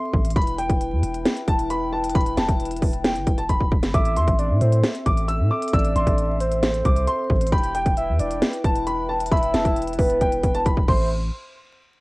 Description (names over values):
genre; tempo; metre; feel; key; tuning
hip hop, trap; 134 BPM; 4/4; half-time; unclear; A4 = 440 Hz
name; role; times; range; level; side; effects
warm concert grand piano; melody; 0.0-11.1 s; G5 to E6; -27 LUFS; equal; cassette tape, analog delay
breathy mellow large flute ensemble; sustained chords; 0.0-11.1 s; C4 to G5; -30 LUFS; left 2 dB; cassette tape
long sustained 808-style bass; bass; 0.1-11.3 s; E1 to A2; -24 LUFS; equal; none
trap drum kit; drums; 0.1-11.0 s; crash cymbal, hi-hat, kick drum, snare drum; -21 LUFS; equal; cassette tape
soft octave-layered synth lead; second line; 3.9-11.1 s; B4 to G5; -25 LUFS; right 1 dB; chorus, cassette tape, analog delay
room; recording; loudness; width
little or no reverb; home recording on cassette, vinyl crackle; -19 LUFS; side -23 dB against mid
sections
0.0-11.1 A section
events
drum fill 3.5-3.9, 10.2-11.1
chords
0.4 Em; 3.9 Am; 7.5 Em; 10.9 Am; 11.1 N.C.